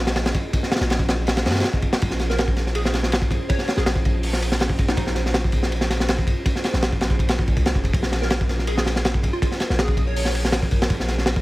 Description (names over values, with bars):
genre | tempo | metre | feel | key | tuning
drum and bass, jungle | 162 BPM | 4/4 | straight | Bb minor | A4 = 440 Hz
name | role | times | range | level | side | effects
airy breathy pad | sustained chords | 0.0-11.4 s | Db4 to Eb5 | -32 LUFS | right 1 dB | chorus
long sustained 808-style bass | bass | 0.0-11.4 s | F1 to G2 | -24 LUFS | equal | tube saturation
crunchy breakbeat drum kit | drums | 0.1-11.4 s | hi-hat, kick drum, ride cymbal, snare drum | -21 LUFS | equal | none
plucky unison lead | melody | 2.3-5.2, 8.2-10.6 s | Eb4 to Db5 | -31 LUFS | right 1 dB | dub echo
room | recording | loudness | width
studio ambience | none | -19 LUFS | side -18 dB against mid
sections
0.0-11.4 A section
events
none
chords
0.0 Bbm7